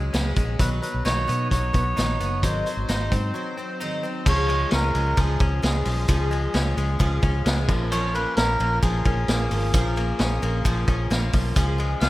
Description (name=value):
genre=jangly indie pop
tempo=132 BPM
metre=4/4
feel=straight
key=Db mixolydian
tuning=A4 = 436 Hz
part: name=picked twelve-string acoustic guitar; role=accompaniment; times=0.0-12.1 s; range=Ab2 to C5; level=-31 LUFS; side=right 1 dB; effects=wide subtle chorus
part: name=direct-recorded clean electric guitar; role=arpeggios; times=0.0-12.1 s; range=F3 to Eb4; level=-30 LUFS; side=left 3 dB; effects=none
part: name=vintage muted fingered electric bass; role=bass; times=0.0-12.1 s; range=Gb1 to Cb3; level=-24 LUFS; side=equal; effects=none
part: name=vintage drum kit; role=drums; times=0.1-12.1 s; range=crash cymbal, hi-hat, kick drum, ride cymbal, snare drum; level=-25 LUFS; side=equal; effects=none
part: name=melodica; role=melody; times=0.6-12.1 s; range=Ab4 to F5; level=-28 LUFS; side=right 1 dB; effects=none
part: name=glockenspiel with hard plastic mallets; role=second line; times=11.6-12.1 s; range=Ab5 to F6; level=-32 LUFS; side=left 4 dB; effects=none
room=light reverb, studio ambience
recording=rough home demo mix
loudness=-20 LUFS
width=side -17 dB against mid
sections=0.0-4.3 A section; 4.3-12.1 B section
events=break 3.3-4.3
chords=0.0 Dbsus4; 0.6 Cb; 2.4 Ab7; 4.3 Db; 7.7 Bbm; 11.6 Db